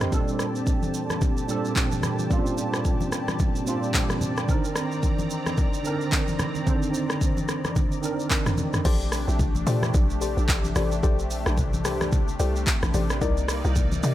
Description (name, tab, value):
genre	amapiano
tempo	110 BPM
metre	4/4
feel	swing 58% on 16ths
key	Bb major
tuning	A4 = 439 Hz
part	barky tine electric piano	accompaniment	0.0-8.9 s	Bb2 to G5	-28 LUFS	right 3 dB	overdrive, ensemble chorus
part	lush unison pad	sustained chords	0.0-14.1 s	Bb2 to C6	-32 LUFS	equal	chorus, phaser, sidechain pumping
part	deep house drum kit	drums	0.0-14.1 s	crash cymbal, handclaps, hi-hat, kick drum, rim click, shaker, toms	-25 LUFS	equal	none
part	congas	percussion	0.0-14.0 s	none	-32 LUFS	left 2 dB	none
part	deep mellow chord stab	stabs	8.8-14.1 s	Eb4 to D5	-32 LUFS	left 7 dB	chorus, tape echo
part	hollow log drum bass	bass	8.9-14.1 s	A1 to C3	-25 LUFS	equal	none
room	digital ambience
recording	none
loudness	-22 LUFS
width	side -13 dB against mid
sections	0.0-8.8 A section; 8.8-14.1 B section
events	drop 8.8-14.1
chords	0.1 Bbmaj13; 4.5 Cm9; 8.8 Bbmaj13; 13.2 Cm9